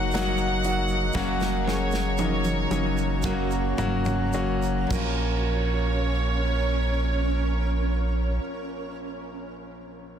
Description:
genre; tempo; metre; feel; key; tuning
pop ballad; 53-60 BPM; 4/4; straight; Bb minor; A4 = 441 Hz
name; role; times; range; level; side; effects
warm studio violin section; second line; 0.0-8.4 s; Db5 to Gb5; -32 LUFS; right 1 dB; none
warm concert grand piano; accompaniment; 0.0-10.2 s; Bb1 to Bb4; -29 LUFS; left 4 dB; none
shimmering ambient pad; sustained chords; 0.0-8.4 s; Gb3 to Bb5; -34 LUFS; right 2 dB; chorus, built-in reverb
picked steel-string acoustic guitar; arpeggios; 0.0-8.5 s; Gb2 to Gb4; -34 LUFS; right 9 dB; tape echo
warm sub bass; bass; 0.0-8.4 s; Gb1 to Bb1; -27 LUFS; right 1 dB; none
modern studio drum kit; drums; 0.1-5.2 s; crash cymbal, hi-hat, kick drum, snare drum, toms; -31 LUFS; right 1 dB; soft clipping on kick
tube shaker; percussion; 0.1-6.0 s; none; -44 LUFS; right 14 dB; none
room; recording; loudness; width
studio reverb; dense, heavily limited modern master; -23 LUFS; side -9 dB against mid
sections
0.0-5.5 A section; 5.5-10.0 B section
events
slowing down 0.0-5.5; drum fill 1.1-5.5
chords
0.0 Ebm/Gb; 1.1 Gb; 4.9 Bbm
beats
0.14 | 1.15 2.18 3.24 4.34 | 5.47 6.61 7.72 8.84

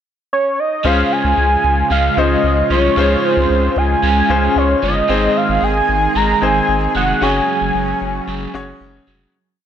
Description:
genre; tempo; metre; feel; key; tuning
pop; 113 BPM; 4/4; straight; Db major; A4 = 439 Hz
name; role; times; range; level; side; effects
fat analog lead; melody; 0.3-8.8 s; C5 to Bb5; -16 LUFS; equal; chorus, ping-pong delay
clear baby grand piano; accompaniment; 0.8-9.4 s; C4 to Db5; -21 LUFS; left 4 dB; none
crunchy overdriven guitar; accompaniment; 0.8-9.7 s; Gb2 to Db4; -24 LUFS; right 4 dB; wide subtle chorus
chorused pulse-width pad; sustained chords; 0.8-9.3 s; Db3 to Ab4; -21 LUFS; right 2 dB; none
round analog bass; bass; 0.8-9.3 s; F1 to Db2; -19 LUFS; equal; none
room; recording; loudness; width
light reverb; none; -13 LUFS; side -9 dB against mid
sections
0.0-0.8 pickup bar; 0.8-9.3 chorus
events
fade-out 7.2-9.3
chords
0.0 N.C.; 0.8 Dbmaj7; 5.1 Ab; 7.2 Gbsus2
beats
0.32 | 0.85 1.38 1.91 2.44 | 2.97 3.50 4.03 4.56 | 5.09 5.63 6.16 6.69 | 7.22 7.75 8.28 8.81

